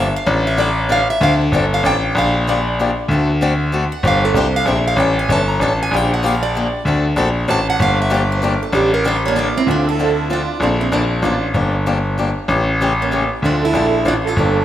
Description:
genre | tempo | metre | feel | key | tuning
acoustic string swing (jazz manouche) | 192 BPM | 3/4 | swing 60% on 8ths | D minor | A4 = 442 Hz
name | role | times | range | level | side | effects
picked plugged-in steel-string acoustic guitar | melody | 0.0-14.6 s | Bb3 to Bb5 | -20 LUFS | right 2 dB | none
picked swing-style acoustic guitar | accompaniment | 0.0-14.6 s | C3 to A4 | -21 LUFS | left 3 dB | none
bright concert grand piano | bass | 0.0-14.6 s | G1 to D2 | -16 LUFS | left 1 dB | none
musette accordion | second line | 9.3-14.6 s | C#4 to A4 | -23 LUFS | right 7 dB | none
room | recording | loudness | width
light reverb, small room ambience | rough home demo mix | -14 LUFS | side -11 dB against mid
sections
0.0-2.2 A section; 2.2-9.7 A section; 9.7-14.6 B section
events
steel-string acoustic guitar solo 0.0-9.7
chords
0.3 A7sus4; 1.2 Dm7; 2.2 Bb6; 3.1 D7; 4.0 G7sus4; 5.0 A7; 5.9 Bb6; 6.9 D7; 7.8 Gm7; 8.7 A7sus4; 9.7 Dm9; 10.6 Bbmaj7; 11.6 Gm7; 12.5 A7b9; 13.4 Dm7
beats
| 0.28 0.59 0.90 | 1.22 1.53 1.84 | 2.15 2.47 2.78 | 3.10 3.41 3.72 | 4.04 4.35 4.66 | 4.97 5.29 5.60 | 5.92 6.23 6.54 | 6.85 7.17 7.48 | 7.79 8.11 8.42 | 8.73 9.05 9.36 | 9.67 9.99 10.30 | 10.61 10.93 11.24 | 11.55 11.87 12.18 | 12.49 12.80 13.12 | 13.43 13.74 14.06 | 14.37

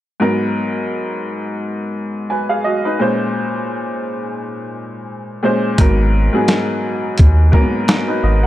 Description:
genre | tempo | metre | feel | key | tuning
hip hop, boom-bap hip-hop | 86 BPM | 4/4 | swing 57% on 16ths | G# minor | A4 = 441 Hz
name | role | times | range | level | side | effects
bright upright piano | accompaniment | 0.2-8.5 s | G#2 to G#5 | -18 LUFS | equal | high-pass filter, low-pass filter
soft dub sub bass | bass | 5.8-8.5 s | G#1 to D#2 | -13 LUFS | equal | none
boom bap sampler-style drum kit | drums | 5.8-8.1 s | hi-hat, kick drum, snare drum | -14 LUFS | equal | none
room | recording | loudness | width
light reverb | none | -15 LUFS | side -14 dB against mid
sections
0.2-5.8 A section; 5.8-8.5 B section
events
none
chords
0.2 G#m9; 3.0 A#m9; 5.8 G#m9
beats
| 0.20 0.90 1.60 2.30 | 2.99 3.69 4.39 5.09 | 5.79 6.48 7.18 7.88

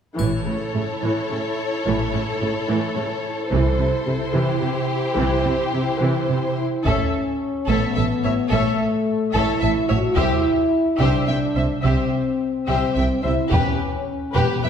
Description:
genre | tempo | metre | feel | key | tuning
cinematic, epic orchestral film score | 72 BPM (dotted quarters) | 6/8 | straight | unclear | A4 = 440 Hz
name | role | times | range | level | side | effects
warm symphonic violin section | second line | 0.2-14.7 s | G4 to E5 | -26 LUFS | left 2 dB | none
dark symphonic viola section | accompaniment | 0.2-14.7 s | C3 to E5 | -27 LUFS | equal | none
rich symphonic double bass section | bass | 0.2-14.7 s | E1 to C2 | -25 LUFS | right 2 dB | none
warm symphonic cello section | bass | 0.2-14.7 s | E2 to C3 | -25 LUFS | right 2 dB | none
triangle | percussion | 0.2-1.3 s | none | -40 LUFS | left 5 dB | none
mellow French horn section | sustained chords | 6.6-14.7 s | A3 to F#4 | -22 LUFS | left 1 dB | none
warm symphonic violin section | melody | 6.9-14.7 s | B4 to A5 | -32 LUFS | left 4 dB | none
taiko ensemble | drums | 6.9-14.6 s | none | -26 LUFS | left 1 dB | none
room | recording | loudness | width
wet scoring stage reverb, RT60 1.6 s | heard from further back in the room | -19 LUFS | side -8 dB against mid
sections
0.2-6.9 A section; 6.9-14.7 B section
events
none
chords
0.2 A; 3.5 C; 6.9 A; 10.2 C; 13.5 Em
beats
| 0.18 1.02 | 1.85 2.68 | 3.50 4.33 | 5.17 6.00 | 6.85 7.69 | 8.52 9.35 | 10.17 11.00 | 11.84 12.68 | 13.52 14.36

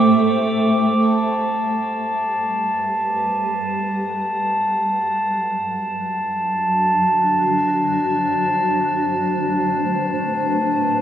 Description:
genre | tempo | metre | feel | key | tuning
ambient | free time | none | none | unclear | A4 = 440 Hz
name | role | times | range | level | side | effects
granular cloud pad | sustained chords | 0.0-11.0 s | F#3 to G5 | -21 LUFS | right 1 dB | built-in reverb
analog drone | drone | 0.3-1.1 s | A3 to A4 | -27 LUFS | right 1 dB | none
glass harmonica | texture | 0.0-11.0 s | A5 to D6 | -20 LUFS | equal | none
room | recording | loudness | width
wet huge ambient reverb, RT60 7.5 s | dreamy mix soaked in reverb | -17 LUFS | side -10 dB against mid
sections
1.0-11.0 A section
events
fade-in on ambient pad 1.0-11.0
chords
0.0 D7sus4/A; 1.0 Gmaj7; 5.0 D7/F#; 8.9 Am9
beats
free time

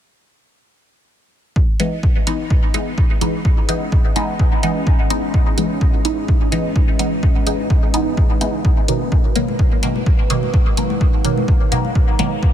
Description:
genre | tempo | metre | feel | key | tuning
dub techno | 127 BPM | 4/4 | swing 55% on 16ths | C# minor | A4 = 443 Hz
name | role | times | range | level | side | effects
deep dark ambient pad | sustained chords | 3.2-12.5 s | G#3 to F#5 | -26 LUFS | equal | chorus, built-in reverb, sidechain pumping
electronic kick drum | drums | 1.6-12.5 s | none | -16 LUFS | equal | none
filtered dub chord stab | stabs | 1.8-12.4 s | B2 to D#4 | -21 LUFS | equal | phaser, sidechain pumping, dub echo
electronic hi-hat | drums | 1.8-12.3 s | none | -25 LUFS | equal | overdrive
congas | percussion | 9.5-12.3 s | none | -29 LUFS | left 8 dB | none
room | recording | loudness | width
light reverb | none | -14 LUFS | side -10 dB against mid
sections
1.6-12.5 A section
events
none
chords
1.6 C#m7; 9.1 G#m7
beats
| 1.56 2.03 2.51 2.98 | 3.45 3.92 4.39 4.87 | 5.34 5.81 6.29 6.76 | 7.23 7.70 8.18 8.65 | 9.12 9.59 10.06 10.54 | 11.01 11.48 11.95 12.43

